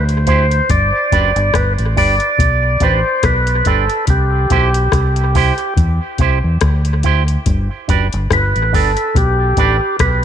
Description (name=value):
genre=roots reggae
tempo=71 BPM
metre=4/4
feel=swing 57% on 16ths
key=G major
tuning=A4 = 439 Hz
part: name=percussive tonewheel organ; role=melody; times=0.0-10.2 s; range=G4 to D5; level=-17 LUFS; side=equal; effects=slow rotary speaker, dub echo
part: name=deep dub fingered electric bass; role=bass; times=0.0-10.2 s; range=F#1 to E2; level=-15 LUFS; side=equal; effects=none
part: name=soft vintage rhythm box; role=drums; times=0.1-10.2 s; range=hi-hat, kick drum, rim click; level=-18 LUFS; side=left 2 dB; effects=none
part: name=electric guitar with an envelope filter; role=accompaniment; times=0.3-9.8 s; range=D4 to C5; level=-22 LUFS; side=right 11 dB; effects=warbly pitch drift, dub echo
room=light reverb, digital ambience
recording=1960s-style stereo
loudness=-12 LUFS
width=side -9 dB against mid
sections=0.0-10.2 A section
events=none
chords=0.0 C; 0.7 G; 4.1 C; 7.5 G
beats=| 0.69 1.54 2.38 3.23 | 4.08 4.92 5.77 6.61 | 7.46 8.30 9.15 9.99